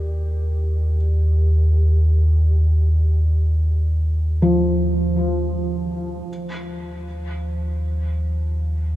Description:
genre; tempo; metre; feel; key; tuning
ambient; free time; none; none; Eb major; A4 = 441 Hz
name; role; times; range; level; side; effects
felt-muted upright piano; arpeggios; 0.0-9.0 s; F3 to G4; -25 LUFS; equal; diffuse ambient delay
warm sub bass; bass; 0.0-9.0 s; Eb2; -18 LUFS; equal; none
room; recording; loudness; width
light reverb, small room ambience; cassette tape; -17 LUFS; side -14 dB against mid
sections
0.0-9.0 A section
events
none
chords
0.0 Ebmaj7; 6.3 N.C.

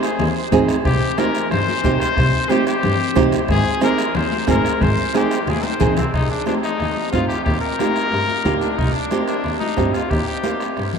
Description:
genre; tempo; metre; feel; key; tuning
latin, cumbia; 182 BPM; 4/4; straight; C minor; A4 = 440 Hz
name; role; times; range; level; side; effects
bright trumpet; second line; 0.0-10.9 s; C4 to C5; -22 LUFS; left 4 dB; none
flamenco guitar; accompaniment; 0.0-10.7 s; Bb3 to Ab4; -21 LUFS; right 5 dB; none
bombo; percussion; 0.0-10.9 s; none; -25 LUFS; equal; none
guiro; percussion; 0.0-11.0 s; none; -36 LUFS; right 9 dB; none
warm double bass; bass; 0.2-10.9 s; Ab1 to G2; -22 LUFS; equal; none
congas; percussion; 0.2-11.0 s; none; -25 LUFS; left 7 dB; none
room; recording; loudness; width
wet huge ambient reverb, RT60 8.5 s; in a vast, echoing space; -16 LUFS; side -6 dB against mid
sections
0.0-6.1 A section; 6.1-11.0 B section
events
trumpet solo 0.0-6.1, 6.1-11.0; drum fill 5.5-6.1, 10.4-11.0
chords
0.0 Ab; 0.9 Cm; 3.5 Abadd9; 6.1 Cm; 7.5 Eb; 8.8 Cmadd9; 10.1 Eb

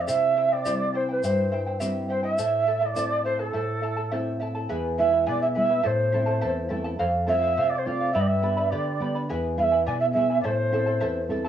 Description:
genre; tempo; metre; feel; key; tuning
andean folk, Andean ensemble; 104 BPM; 2/4; straight; A minor; A4 = 440 Hz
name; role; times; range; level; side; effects
large quena; melody; 0.0-11.2 s; A4 to F5; -23 LUFS; right 2 dB; cassette tape
charango; accompaniment; 0.0-11.5 s; E4 to B5; -31 LUFS; left 1 dB; cassette tape
nylon-string guitar; accompaniment; 0.0-11.5 s; E2 to A4; -28 LUFS; equal; cassette tape
tube shaker; percussion; 0.1-3.1 s; none; -39 LUFS; left 3 dB; none
room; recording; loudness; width
light reverb; home recording on cassette, small room ambience; -22 LUFS; side -10 dB against mid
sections
0.0-4.7 A section; 4.7-11.5 B section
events
break 3.5-4.7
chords
0.1 C; 2.4 Am; 4.7 E; 5.8 Am; 7.0 F; 8.1 G; 9.3 E; 10.4 Am

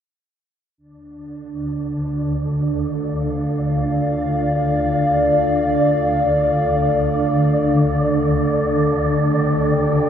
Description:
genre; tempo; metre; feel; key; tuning
ambient; free time; none; none; D minor; A4 = 440 Hz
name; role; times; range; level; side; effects
dark analog pad; sustained chords; 1.3-10.1 s; D4 to G5; -19 LUFS; equal; chorus
swarming drone; drone; 1.3-10.1 s; D2 to D3; -20 LUFS; equal; built-in reverb, ensemble chorus
wind-like tuned noise texture; texture; 1.7-10.1 s; D5; -27 LUFS; right 1 dB; built-in reverb, ensemble chorus, shimmer reverb
room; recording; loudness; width
wet lush hall reverb, RT60 2.5 s; dreamy mix soaked in reverb; -16 LUFS; side -8 dB against mid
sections
0.8-10.1 A section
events
none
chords
0.8 Dm

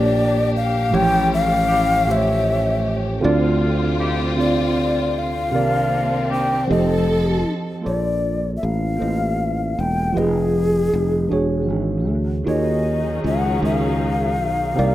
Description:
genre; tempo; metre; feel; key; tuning
slow six-eight R&B; 52 BPM (dotted quarters); 6/8; straight; Bb major; A4 = 437 Hz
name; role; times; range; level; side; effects
breathy round clay ocarina; melody; 0.0-14.9 s; Ab4 to G5; -22 LUFS; left 2 dB; slapback echo, plate reverb
tine electric piano; accompaniment; 0.0-14.9 s; A2 to F5; -22 LUFS; right 2 dB; phaser, plate reverb
warm studio string section; sustained chords; 0.0-7.8, 12.5-14.9 s; C3 to A4; -26 LUFS; left 1 dB; plate reverb
sustaining fretless electric bass; bass; 0.0-14.9 s; E1 to Eb2; -23 LUFS; equal; analog chorus
mellow horn section; stabs; 0.9-6.6 s; C#3 to G4; -30 LUFS; left 2 dB; plate reverb
room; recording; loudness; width
moderate studio reverb, RT60 0.6 s; rough home demo mix; -17 LUFS; side -14 dB against mid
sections
0.0-7.8 A section; 7.8-14.9 B section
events
none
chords
0.0 Bb69; 0.9 A7b13; 3.2 Dm7; 5.5 Cm9; 6.7 F7; 7.8 Bbmaj7; 10.1 Fm7b5; 11.3 E13; 12.5 Ebm11

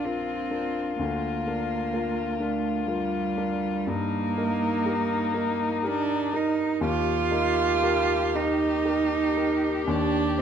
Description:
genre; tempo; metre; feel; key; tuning
classical, slow romantic movement for piano trio; 61 BPM; 3/4; uneven beats, rubato; unclear; A4 = 440 Hz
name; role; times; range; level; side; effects
dark violin; melody; 0.0-10.4 s; Eb4 to G4; -30 LUFS; left 9 dB; none
warm cello; second line; 0.0-10.4 s; G3 to F4; -26 LUFS; right 6 dB; none
dark baby grand piano; accompaniment; 0.0-10.4 s; Bb1 to C5; -29 LUFS; left 2 dB; none
room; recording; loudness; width
light reverb; close, detailed microphones; -23 LUFS; side -8 dB against mid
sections
0.0-10.4 A section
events
none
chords
0.0 Bb; 1.0 Bb/D; 3.9 Eb/G; 6.8 Eb; 9.9 Cm/Eb (rootless)

